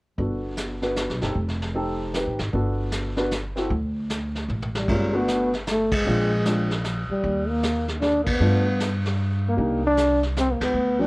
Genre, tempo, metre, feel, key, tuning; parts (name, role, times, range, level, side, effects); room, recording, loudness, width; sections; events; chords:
jazz, small-group swing and bop; 153 BPM; 3/4; swing 64% on 8ths; A4 = 440 Hz
warm upright piano; accompaniment; 0.2-11.1 s; F#3 to B4; -26 LUFS; equal
upright bass; bass; 0.2-11.1 s; F1 to G2; -26 LUFS; equal
vintage brush drum kit; drums; 0.2-11.1 s; brushed snare drum, crash cymbal, hi-hat, kick drum, ride cymbal, snare drum, toms; -30 LUFS; equal
breathy trombone; melody; 4.8-11.1 s; G3 to D4; -23 LUFS; equal
light reverb; worn, warbling old tape, cassette tape, warbly pitch drift; -21 LUFS; side -25 dB against mid
0.2-4.9 A section; 4.9-11.1 B section
drum fill 4.5-4.9; band accent 5.9, 8.2, 10.6
0.2 Gmaj7; 1.4 F7; 2.5 Gmaj7; 3.7 D5; 4.9 Gmaj9; 6.1 Bb9; 7.2 Eb5; 8.4 G7; 9.6 Cm9